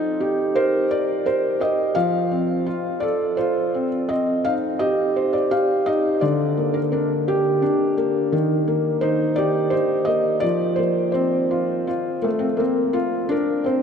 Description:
children's music, lullaby; 85 BPM; 3/4; rubato; A4 = 440 Hz
felt-muted upright piano; solo; 0.0-13.8 s; D3 to F5; -19 LUFS; equal
wet cathedral reverb, RT60 6.9 s; recorded in a church or concert hall, nothing above 10.5 kHz; -19 LUFS; side -7 dB against mid
0.0-12.6 A section; 12.6-13.8 B section
0.0 Eb; 2.0 F5; 2.7 F; 4.1 Cm; 6.2 Gm/D; 8.3 Eb; 10.4 Fsus4; 11.9 F; 12.6 Bbsus2

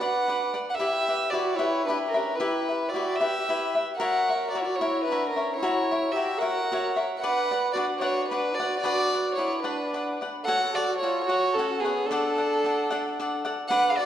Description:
mexican folk, mariachi; 75 BPM (dotted quarters); 6/8; straight; B harmonic minor, F# harmonic minor from 10.4 s; A4 = 440 Hz
warm violin; melody; 0.0-14.1 s; G#4 to F#5; -27 LUFS; equal
dark trumpet; second line; 0.0-14.1 s; B3 to B4; -30 LUFS; right 3 dB
cavaquinho; accompaniment; 0.0-14.1 s; D4 to F#5; -28 LUFS; left 2 dB
wet recital hall reverb, RT60 1.8 s; recorded in a church or concert hall; -24 LUFS; side -10 dB against mid
0.0-10.4 A section; 10.4-14.1 B section
0.0 Bm; 0.8 Em; 4.0 F#7; 7.2 Bm; 10.4 F#m; 12.1 D

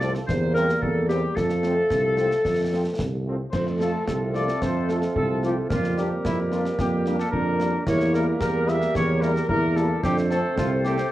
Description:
military-style march for wind band; 111 BPM; 2/4; straight; F major; A4 = 440 Hz
mellow trumpet section; melody; 0.0-11.1 s; C4 to E5; -29 LUFS; left 2 dB
warm woodwind section; second line; 0.0-11.1 s; F4 to D5; -27 LUFS; left 1 dB
mellow French horn section; accompaniment; 0.0-10.9 s; F3 to F4; -31 LUFS; left 2 dB
warm trombone section; sustained chords; 0.0-11.1 s; F3 to C4; -31 LUFS; right 2 dB
mellow tuba; bass; 0.0-11.0 s; C2 to F2; -26 LUFS; right 2 dB
concert snare drum, concert bass drum and clash cymbals; drums; 0.0-11.1 s; -31 LUFS; equal
warm euphonium; second line; 3.5-11.1 s; A3 to G4; -30 LUFS; right 1 dB
moderate large studio reverb, RT60 0.8 s; worn, warbling old tape, cassette tape, warbly pitch drift; -21 LUFS; side -14 dB against mid
0.0-3.5 A section; 3.5-11.1 A section
0.3 C7/E; 1.4 F; 5.7 Gm7/F; 7.9 Edim; 10.0 F

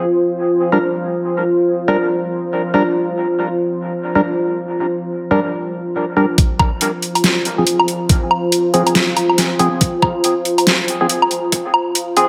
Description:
deep dubstep; 140 BPM; 4/4; swing 60% on 16ths, half-time; A4 = 438 Hz
dark analog pad; sustained chords; 0.0-12.3 s; F4 to C5; -20 LUFS; equal; chorus
percussive organ stab; stabs; 0.7-12.3 s; F3 to Bb4; -21 LUFS; equal; subtle chorus, dub echo
dubstep drum kit; drums; 6.4-12.3 s; hi-hat, snare drum, woodblock; -18 LUFS; equal; overdrive
electronic kick drum; drums; 6.4-11.6 s; -17 LUFS; equal; overdrive
wet plate reverb, RT60 1.6 s, digital ambience; dreamy mix soaked in reverb, high-pass filter; -17 LUFS; mono
0.0-6.4 A section; 6.4-12.3 B section
build-up 6.4-12.3
0.0 Gm; 6.4 Fm

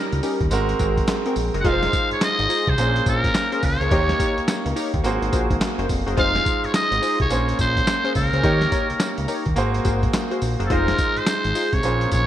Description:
R&B, new jack swing; 106 BPM; 4/4; swing 63% on 16ths; A4 = 440 Hz
trumpet with metal mute; melody; 0.0-12.3 s; A4 to Gb5; -23 LUFS; equal
bright concert grand piano; accompaniment; 0.0-12.3 s; G3 to Db5; -25 LUFS; right 2 dB
fat analog bass; bass; 0.1-12.3 s; F1 to Eb2; -24 LUFS; equal
boom bap sampler-style drum kit; drums; 0.1-12.3 s; handclaps, hi-hat, kick drum, snare drum, tambourine; -24 LUFS; equal
funky polysynth comp; stabs; 0.2-11.7 s; C4 to Db5; -28 LUFS; left 2 dB; chorus
moderate plate reverb, RT60 1.6 s, digital ambience; bright 1980s-style digital production; -18 LUFS; side -11 dB against mid
0.0-12.3 A section
0.0 Eb7; 0.5 Ab9; 1.6 Fm7; 2.8 Bbm9; 3.9 Eb7; 5.0 Ab9; 6.2 Fm7; 7.3 Bbm9; 8.4 Eb7; 9.6 Ab9; 10.7 Fm7

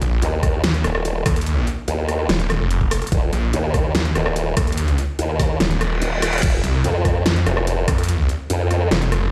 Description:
heavy wobble dubstep; 145 BPM; 4/4; half-time; A4 = 440 Hz
snarling distorted saw bass; bass; 0.0-9.3 s; Eb1 to F2; -22 LUFS; equal; distortion, overdrive
dubstep drum kit; drums; 0.0-9.2 s; crash cymbal, hi-hat, rim click, snare drum; -26 LUFS; equal; overdrive
formant-sweep wobble bass; bass; 0.2-8.9 s; Eb1 to F2; -22 LUFS; equal; chorus, overdrive
electronic kick drum; drums; 0.4-8.0 s; -22 LUFS; equal; overdrive
reverse cymbal; sound effects; 5.8-6.4 s; -28 LUFS; equal
little or no reverb; played on a big sound system in a bare room, large studio reverb; -20 LUFS; mono
0.0-9.3 A section
reverse cymbal 5.8-6.4; kick drops out 6.0-6.4
0.0 Eb5; 6.4 F5

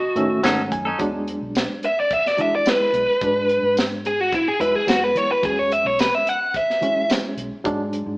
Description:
straight-eighth soul blues; 108 BPM; 4/4; straight; E mixolydian; A4 = 439 Hz
biting lead guitar; melody; 0.0-7.1 s; E4 to F#5; -18 LUFS; equal; overdrive
barky reed electric piano; accompaniment; 0.0-8.2 s; D#3 to G#5; -26 LUFS; right 1 dB; overdrive, fast tremolo
vintage muted fingered electric bass; bass; 0.0-8.2 s; B1 to E3; -33 LUFS; equal
tight funk drum kit; drums; 0.2-8.1 s; hi-hat, kick drum, snare drum, tambourine; -24 LUFS; equal
direct-recorded clean electric guitar; stabs; 0.4-1.0 s; F#3 to A4; -24 LUFS; left 1 dB
wet stone room reverb, RT60 1.3 s; band playing live in one room, AM radio sound; -18 LUFS; side -24 dB against mid
1.0-8.2 A section
reed electric piano fill 0.0-1.0; lead electric guitar solo 1.0-8.2
0.0 B9 (rootless); 1.0 E9

